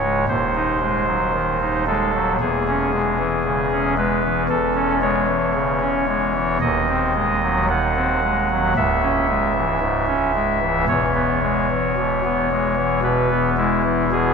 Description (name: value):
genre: classical, chorale-style piece for pipe organ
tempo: 56 BPM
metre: 4/4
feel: rubato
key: C# minor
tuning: A4 = 440 Hz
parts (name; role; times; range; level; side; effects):
- pipe organ, soft reed; solo; 0.0-14.3 s; C#1 to F#5; -17 LUFS; equal; none
room: wet cathedral reverb, RT60 5.5 s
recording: none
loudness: -17 LUFS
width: side -5 dB against mid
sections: 0.0-14.3 A section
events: none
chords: 0.3 G#7/D#; 2.4 C#m/E; 6.6 G#7/D#; 8.8 C#m; 10.9 E